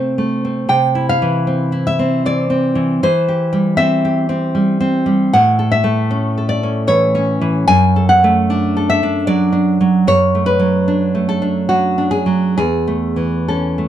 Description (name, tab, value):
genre	romantic piece for solo classical guitar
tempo	65-80 BPM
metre	3/4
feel	rubato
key	unclear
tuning	A4 = 441 Hz
part	nylon-string guitar	solo	0.0-13.9 s	E2 to G#5	-13 LUFS	equal	none
room	light reverb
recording	dry, close 1970s-style studio recording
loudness	-13 LUFS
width	side -11 dB against mid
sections	0.0-13.9 A section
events	none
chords	0.0 Am/C; 0.7 C; 3.0 C/E; 5.3 A; 7.7 D/F#; 12.6 A/E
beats	| 0.72 1.49 2.27 | 3.04 3.81 4.57 | 5.34 6.12 6.91 | 7.71 8.51 9.30 | 10.09 10.90 11.73 | 12.60 13.51